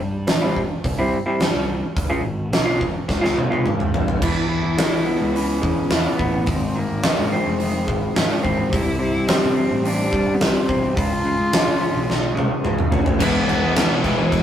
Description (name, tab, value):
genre	quiet-loud alternative rock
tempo	107 BPM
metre	4/4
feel	straight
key	unclear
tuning	A4 = 440 Hz
part	electric guitar through a small old amp	arpeggios	0.0-13.2 s	G#2 to E#4	-23 LUFS	equal	harmonic tremolo
part	fuzz picked electric bass	bass	0.0-14.4 s	F1 to E3	-26 LUFS	equal	overdrive
part	huge arena drum kit	drums	0.3-14.4 s	crash cymbal, hi-hat, kick drum, snare drum, toms	-21 LUFS	equal	none
part	warm cello	melody	3.7-14.4 s	E3 to E#4	-26 LUFS	left 2 dB	none
part	crunchy overdriven guitar	riff	13.2-14.4 s	E3 to G#4	-22 LUFS	left 5 dB	none
part	sludgy distorted guitar	riff	13.2-14.4 s	E3 to E4	-22 LUFS	right 4 dB	overdrive
room	light reverb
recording	rough rehearsal-room recording, tube saturation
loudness	-18 LUFS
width	side -10 dB against mid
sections	0.0-4.2 A section; 4.2-13.2 B section; 13.2-14.4 C section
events	drum fill 3.1-4.2, 12.1-13.2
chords	0.0 C; 2.0 C#; 4.2 E; 6.5 G#; 8.7 C5; 11.0 C#; 13.2 E